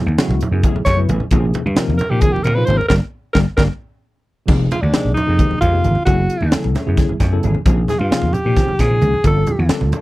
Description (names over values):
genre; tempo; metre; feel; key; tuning
electric jazz fusion; 265 BPM (eighths); 7/8; straight; unclear; A4 = 439 Hz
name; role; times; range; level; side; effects
tine electric piano; accompaniment; 0.0-9.9 s; C3 to B4; -23 LUFS; left 1 dB; medium stereo tremolo
vintage slap bass; bass; 0.1-9.9 s; F1 to Bb2; -17 LUFS; equal; none
congas; percussion; 0.1-10.0 s; none; -24 LUFS; right 3 dB; none
clean electric guitar; stabs; 0.2-10.0 s; Eb3 to A4; -26 LUFS; left 4 dB; ensemble chorus
crisp fusion drum kit; drums; 0.2-10.0 s; crash cymbal, hi-hat, kick drum, snare drum; -18 LUFS; equal; none
bright alto saxophone; melody; 0.6-9.7 s; D4 to Db5; -19 LUFS; equal; none
room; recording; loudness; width
little or no reverb; dry, close 1970s-style studio recording; -14 LUFS; side -18 dB against mid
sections
0.0-4.5 A section; 4.5-10.0 B section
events
alto saxophone solo 0.0-4.5; band accent 2.9-4.5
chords
0.0 Gbm9; 1.3 Bbm9; 2.9 Gm; 4.5 Fm9; 6.1 Gbm9; 7.7 Bbm9; 9.2 Gm9